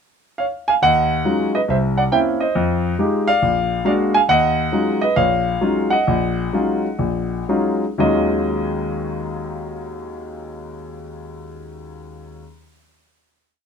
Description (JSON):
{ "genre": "solo jazz", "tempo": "117-138 BPM", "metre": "4/4", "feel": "swing 65% on 8ths", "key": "Eb minor", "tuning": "A4 = 442 Hz", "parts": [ { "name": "warm grand piano", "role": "solo", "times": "0.4-12.4 s", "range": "Bb1 to Ab5", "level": "-18 LUFS", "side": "equal", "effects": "none" } ], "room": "light reverb", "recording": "none", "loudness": "-16 LUFS", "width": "side -6 dB against mid", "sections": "0.0-0.8 pickup bar; 0.8-8.0 A section; 8.0-12.1 final chord", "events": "slowing down 4.3-8.0", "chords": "0.0 Db; 0.8 Ebm11; 1.7 C7b9; 2.5 Fm9; 3.4 Bb7b13; 4.3 Ebm11" }